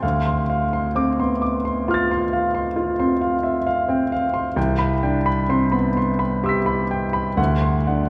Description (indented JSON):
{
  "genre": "classical, impressionist solo piano",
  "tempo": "65 BPM",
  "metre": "5/4",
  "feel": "rubato",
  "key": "unclear",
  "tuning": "A4 = 443 Hz",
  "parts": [
    { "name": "clear grand piano", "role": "solo", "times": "0.0-8.1 s", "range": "C2 to B6", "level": "-21 LUFS", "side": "equal", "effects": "none" }
  ],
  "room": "wet church reverb, RT60 2.9 s",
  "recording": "recorded in a church or concert hall",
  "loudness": "-21 LUFS",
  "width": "mono",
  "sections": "0.0-8.1 A section",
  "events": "none",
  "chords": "0.0 Dm9; 4.6 Cmaj7; 7.4 D7",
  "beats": "| 0.03 0.95 1.85 2.76 3.66 | 4.57 5.50 6.44 7.38"
}